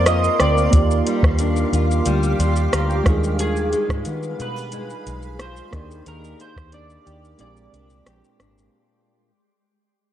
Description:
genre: indie pop, bedroom pop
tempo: 90 BPM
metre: 4/4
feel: straight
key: Eb major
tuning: A4 = 440 Hz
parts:
  - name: electric guitar through a small old amp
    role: melody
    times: 0.0-8.4 s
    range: Ab4 to Eb5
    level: -25 LUFS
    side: right 3 dB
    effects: analog chorus, slapback echo
  - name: flamenco guitar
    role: accompaniment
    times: 0.0-9.3 s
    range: Bb2 to G4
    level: -27 LUFS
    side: left 6 dB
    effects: wide subtle chorus, warbly pitch drift
  - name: soft electric-piano-like synth keys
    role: accompaniment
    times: 0.0-8.8 s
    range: G3 to C6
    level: -26 LUFS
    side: right 5 dB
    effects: chorus, tremolo
  - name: shimmering ambient pad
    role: sustained chords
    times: 0.0-8.7 s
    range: G4 to D6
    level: -30 LUFS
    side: equal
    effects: chorus, built-in reverb
  - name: vintage muted fingered electric bass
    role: bass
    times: 0.0-8.7 s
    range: Ab1 to Eb3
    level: -22 LUFS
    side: equal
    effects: none
  - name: soft vintage rhythm box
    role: drums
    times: 0.1-8.7 s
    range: hi-hat, kick drum, rim click, shaker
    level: -20 LUFS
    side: equal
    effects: vintage 12-bit sampler grit
room: light reverb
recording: dark, warm production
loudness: -17 LUFS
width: side -11 dB against mid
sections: 0.0-8.7 A section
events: fade-out 0.0-8.7; synth keys fill 2.1-3.4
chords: 0.0 Ab69; 0.7 Ebmaj9; 3.1 G7b9/Eb; 5.7 Ebmaj7; 7.4 Bb13

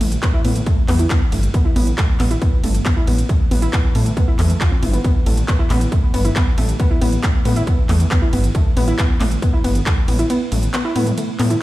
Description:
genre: driving peak-time techno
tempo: 137 BPM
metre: 4/4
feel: straight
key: unclear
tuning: A4 = 443 Hz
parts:
  - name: warbly dusty pluck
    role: riff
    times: 0.0-11.6 s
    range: A3 to F4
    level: -22 LUFS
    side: equal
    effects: chorus, cassette tape, sidechain pumping, tape echo
  - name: detuned saw bass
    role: bass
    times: 0.0-11.6 s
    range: G1 to A2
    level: -18 LUFS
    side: equal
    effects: sidechain pumping
  - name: techno drum kit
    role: drums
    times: 0.0-11.6 s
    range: handclaps, hi-hat, ride cymbal, toms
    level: -24 LUFS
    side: right 1 dB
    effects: sidechain pumping on toms, sidechain pumping on hats, sidechain pumping on cymbals
  - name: electronic kick drum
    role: drums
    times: 0.2-9.9 s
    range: none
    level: -17 LUFS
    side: equal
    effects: none
room: little or no reverb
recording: played on a big sound system in a bare room, stone room reverb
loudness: -14 LUFS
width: side -16 dB against mid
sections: 0.0-11.6 A section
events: kick drops out 10.3-11.6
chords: 0.0 A5

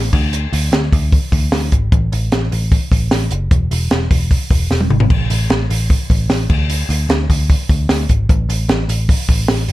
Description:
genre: jangly indie pop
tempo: 151 BPM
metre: 4/4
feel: straight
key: unclear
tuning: A4 = 441 Hz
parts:
  - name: vintage muted picked electric bass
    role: bass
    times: 0.0-9.7 s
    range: E1 to D2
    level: -17 LUFS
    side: equal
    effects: none
  - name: compact cocktail drum kit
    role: drums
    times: 0.1-9.7 s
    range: crash cymbal, hi-hat, kick drum, snare drum, toms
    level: -15 LUFS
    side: equal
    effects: none
room: little or no reverb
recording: none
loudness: -13 LUFS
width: side -16 dB against mid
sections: 0.0-9.7 A section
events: drum fill 4.7-5.1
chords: none

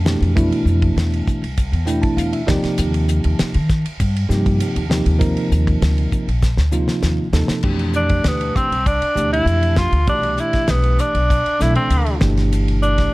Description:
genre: electric jazz fusion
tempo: 99 BPM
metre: 4/4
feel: straight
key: F lydian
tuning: A4 = 440 Hz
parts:
  - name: upright bass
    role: bass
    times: 0.0-13.1 s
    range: G1 to Eb3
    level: -18 LUFS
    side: equal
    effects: none
  - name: bell-like tine electric piano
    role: accompaniment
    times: 0.1-13.1 s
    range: B2 to A5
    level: -21 LUFS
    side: right 1 dB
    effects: fast stereo tremolo
  - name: damped 70s drum kit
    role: drums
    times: 0.1-13.1 s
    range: crash cymbal, hi-hat, kick drum, ride cymbal, snare drum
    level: -22 LUFS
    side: equal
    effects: none
  - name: clear tenor saxophone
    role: melody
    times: 8.0-13.1 s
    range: B3 to F4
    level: -19 LUFS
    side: equal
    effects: none
room: studio reverb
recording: dark, warm production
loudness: -15 LUFS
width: side -20 dB against mid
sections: 0.0-7.6 A section; 7.6-13.1 B section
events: tine electric piano fill 1.6-2.8; drum fill 6.4-7.6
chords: 0.0 Fmaj9; 2.5 Ebmaj9; 7.6 F6; 10.1 Cmaj9; 12.2 Gadd9

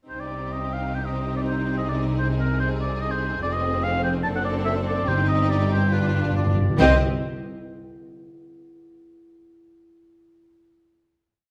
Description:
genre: quick classical-period movement for symphony orchestra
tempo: 143 BPM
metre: 4/4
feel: rubato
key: C minor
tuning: A4 = 440 Hz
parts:
  - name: rich chamber violin section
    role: melody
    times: 0.1-7.0 s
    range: G4 to Eb5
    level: -34 LUFS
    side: equal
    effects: none
  - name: rich chamber violin section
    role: second line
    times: 0.1-7.0 s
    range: C4 to G4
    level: -34 LUFS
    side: equal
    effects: none
  - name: warm oboe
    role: second line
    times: 0.1-7.0 s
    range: Bb4 to A5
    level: -30 LUFS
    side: equal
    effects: none
  - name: rich symphonic viola section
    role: accompaniment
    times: 0.1-7.0 s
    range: C4 to D4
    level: -34 LUFS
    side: equal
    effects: none
  - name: clear chamber cello section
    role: bass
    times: 0.1-7.0 s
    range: F2 to C3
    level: -30 LUFS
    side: equal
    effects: none
  - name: rich chamber double bass section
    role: bass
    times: 0.1-7.0 s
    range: F1 to C2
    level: -30 LUFS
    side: equal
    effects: none
  - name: timpani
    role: percussion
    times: 5.1-7.0 s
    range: G2 to C3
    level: -29 LUFS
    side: equal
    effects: none
room: wet recital hall reverb, RT60 1.6 s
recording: none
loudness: -23 LUFS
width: mono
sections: 0.1-6.8 A section; 6.8-8.5 final chord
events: timpani fill 5.9-6.8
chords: 0.1 Cm; 3.4 Fm; 4.2 D7/F#; 5.1 Cm/G; 5.9 G7; 6.8 N.C.

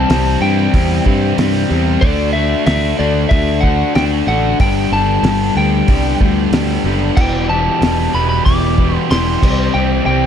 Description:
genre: classic rock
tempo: 93 BPM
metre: 4/4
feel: straight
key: unclear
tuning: A4 = 439 Hz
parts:
  - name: lightly driven lead guitar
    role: melody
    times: 0.0-10.3 s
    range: D5 to D6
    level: -20 LUFS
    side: equal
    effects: plate reverb, tape echo
  - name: distorted electric guitar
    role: riff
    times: 0.0-10.3 s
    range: E2 to G4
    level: -20 LUFS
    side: right 15 dB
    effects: distortion
  - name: overdriven semi-hollow guitar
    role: riff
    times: 0.0-10.3 s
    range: E2 to D4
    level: -18 LUFS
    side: left 14 dB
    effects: none
  - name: modern bright picked electric bass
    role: bass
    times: 0.0-10.3 s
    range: E1 to G2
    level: -18 LUFS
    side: equal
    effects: none
  - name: cloth-damped thuddy drum kit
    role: drums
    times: 0.1-9.6 s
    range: crash cymbal, hi-hat, kick drum, snare drum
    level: -17 LUFS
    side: equal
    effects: none
room: light reverb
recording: none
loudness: -12 LUFS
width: side -8 dB against mid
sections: 0.0-10.3 A section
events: none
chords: 0.0 C; 2.0 D; 4.6 G; 7.2 Em; 9.4 C

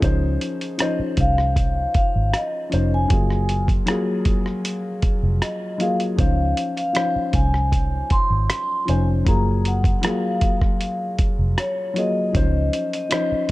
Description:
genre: lush 1970s-style soul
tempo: 78 BPM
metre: 4/4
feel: straight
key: Db major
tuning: A4 = 440 Hz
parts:
  - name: dark grand piano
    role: accompaniment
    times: 0.0-13.5 s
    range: F3 to C5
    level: -25 LUFS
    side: left 2 dB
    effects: none
  - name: vintage muted fingered electric bass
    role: bass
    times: 0.0-13.4 s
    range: F1 to Db2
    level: -21 LUFS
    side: equal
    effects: none
  - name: lo-fi sampler-style drum kit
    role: drums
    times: 0.0-13.5 s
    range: hi-hat, kick drum, rim click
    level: -21 LUFS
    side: equal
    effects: none
  - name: vibraphone with soft mallets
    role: melody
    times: 0.8-13.5 s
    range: Db5 to C6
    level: -24 LUFS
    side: equal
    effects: none
room: small room ambience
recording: dark, warm production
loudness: -18 LUFS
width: side -18 dB against mid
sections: 0.0-13.5 A section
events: none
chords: 0.0 Dbmaj9; 3.1 Gbmaj9; 6.2 Dbmaj9; 9.3 Gbmaj9; 12.3 Dbmaj9

